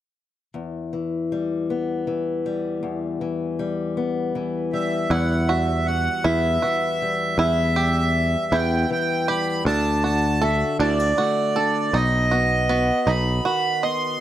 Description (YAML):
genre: folk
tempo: 53 BPM (dotted quarters)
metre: 6/8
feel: straight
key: E minor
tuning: A4 = 440 Hz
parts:
  - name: fingerpicked acoustic archtop guitar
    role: accompaniment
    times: 0.5-14.2 s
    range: E2 to F#4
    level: -26 LUFS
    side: left 4 dB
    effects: none
  - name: accordion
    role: melody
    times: 4.7-14.2 s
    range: D5 to C6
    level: -23 LUFS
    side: right 2 dB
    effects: none
  - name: bluegrass banjo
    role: arpeggios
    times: 5.1-14.2 s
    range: B3 to D#5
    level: -26 LUFS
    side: right 4 dB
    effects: none
  - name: picked electric bass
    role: bass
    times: 5.1-13.4 s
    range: B1 to E2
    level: -22 LUFS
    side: equal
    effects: none
room: light reverb, small room reverb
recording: none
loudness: -20 LUFS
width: side -12 dB against mid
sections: 0.5-5.1 A section; 5.1-14.2 B section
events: none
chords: 0.5 Em; 5.1 Emadd9; 9.7 D; 11.9 B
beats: | 0.54 1.68 | 2.83 3.97 | 5.11 6.25 | 7.38 8.52 | 9.66 10.80 | 11.94 13.07